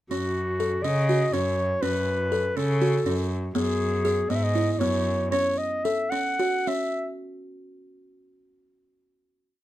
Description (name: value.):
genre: contemporary instrumental, chamber music in an uneven meter.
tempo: 242 BPM (eighths).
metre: 7/8.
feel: uneven beats.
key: F# dorian.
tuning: A4 = 440 Hz.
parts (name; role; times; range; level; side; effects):
warm clarinet; melody; 0.1-7.1 s; F#4 to F#5; -26 LUFS; equal; none.
buzzing kalimba; arpeggios; 0.1-7.1 s; B3 to A4; -28 LUFS; equal; none.
clear cello; bass; 0.1-5.3 s; F#2 to C#3; -27 LUFS; equal; none.
room: little or no reverb.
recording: close, detailed microphones.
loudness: -23 LUFS.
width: side -14 dB against mid.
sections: 0.1-7.2 A section.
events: slowing down 3.6-7.2.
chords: 0.1 F#m; 3.6 C#7(no3)/F#; 5.3 F#5.